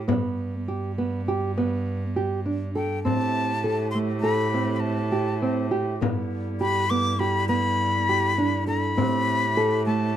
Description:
contemporary instrumental, chamber music in an uneven meter; 101 BPM; 5/4; straight; A4 = 436 Hz
bright cello; bass; 0.0-10.2 s; G2 to A2; -28 LUFS; right 2 dB
nylon-string guitar; arpeggios; 0.1-10.1 s; A3 to A4; -26 LUFS; right 2 dB
frame drum; percussion; 0.1-9.4 s; -28 LUFS; left 6 dB
breathy bright jazz flute; melody; 2.8-10.2 s; G5 to D6; -26 LUFS; left 3 dB
mellow woodwind section; sustained chords; 3.0-10.2 s; C3 to G4; -33 LUFS; right 1 dB
light reverb; dark, warm production; -22 LUFS; side -10 dB against mid
0.0-10.2 A section
0.1 G; 3.1 Am7; 6.0 Em7/G; 9.0 Am7
| 0.09 0.68 1.27 1.87 2.46 | 3.06 3.65 4.24 4.84 5.43 | 6.02 6.62 7.21 7.80 8.40 | 8.99 9.59

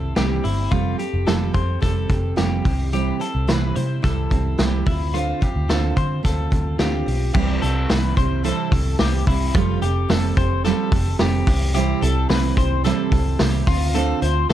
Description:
jangly indie pop; 109 BPM; 4/4; straight; C major; A4 = 443 Hz
picked steel-string acoustic guitar; accompaniment; 0.0-14.5 s; C3 to C5; -24 LUFS; right 8 dB
twelve-string electric guitar; arpeggios; 0.0-14.5 s; E4 to C5; -27 LUFS; left 8 dB; tape echo
vintage muted picked electric bass; bass; 0.0-14.5 s; F1 to D3; -22 LUFS; equal
vintage drum kit; drums; 0.2-14.5 s; crash cymbal, hi-hat, kick drum, snare drum; -22 LUFS; equal
light reverb; dark, warm production; -18 LUFS; side -12 dB against mid
0.0-7.3 A section; 7.3-14.5 B section
0.0 C; 0.7 Fadd9; 2.7 C; 4.9 Dm7; 7.3 C; 9.5 Fadd9; 11.5 C; 13.7 Dm7
0.17 | 0.72 1.27 1.82 2.38 | 2.93 3.48 4.04 4.59 | 5.14 5.69 6.24 6.79 | 7.35 7.90 8.45 9.00 | 9.55 10.10 10.65 11.20 | 11.75 12.30 12.85 13.40 | 13.95 14.50

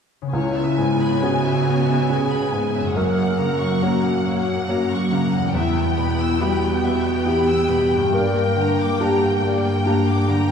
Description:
cinematic, emotional film score for orchestra; 70 BPM; 3/4; rubato; C# dorian; A4 = 440 Hz
concert harp; arpeggios; 0.2-10.5 s; E2 to G#4; -29 LUFS; left 1 dB
rich studio violin section; melody; 0.3-10.5 s; F#5 to G#5; -28 LUFS; left 3 dB
clear studio violin section; second line; 0.3-10.5 s; C#5 to E6; -30 LUFS; left 1 dB
dark clarinet; second line; 0.3-10.3 s; E4 to Bb4; -23 LUFS; left 2 dB
felt-muted upright piano; accompaniment; 0.3-10.5 s; C#2 to G#4; -24 LUFS; left 1 dB
rich studio viola section; accompaniment; 0.3-10.5 s; A#3 to B3; -28 LUFS; right 2 dB
warm studio cello section; bass; 0.3-10.5 s; E2 to C#3; -24 LUFS; right 2 dB
wet scoring stage reverb, RT60 1.5 s; heard from further back in the room; -17 LUFS; side -7 dB against mid
0.3-10.5 A section
0.3 C#m7; 3.0 F#; 5.5 Em; 8.1 Gm
| 0.34 1.22 2.09 | 2.96 3.83 4.69 | 5.55 6.40 7.26 | 8.13 9.00 9.86

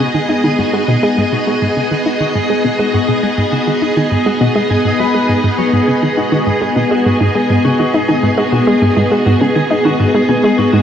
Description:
ambient, sequencer-driven space music; 102 BPM; 4/4; straight; G# minor; A4 = 440 Hz
string machine, full ensemble; sustained chords; 0.0-10.8 s; B3 to D#5; -14 LUFS; equal; ensemble chorus
clean electric guitar; arpeggios; 0.0-10.8 s; D#4 to G#5; -22 LUFS; left 1 dB; auto-pan, analog delay
analog pluck; riff; 0.0-10.8 s; G#2 to D#4; -15 LUFS; equal; chorus, cassette tape, analog delay
wet huge ambient reverb, RT60 7.6 s; worn, warbling old tape, cassette tape, warbly pitch drift; -11 LUFS; side -9 dB against mid
0.0-10.8 A section
filter sweep on synth arpeggio sound 0.0-10.8
0.0 G#m
0.44 | 1.03 1.61 2.20 2.79 | 3.38 3.97 4.56 5.14 | 5.73 6.32 6.91 7.50 | 8.09 8.67 9.26 9.85 | 10.44

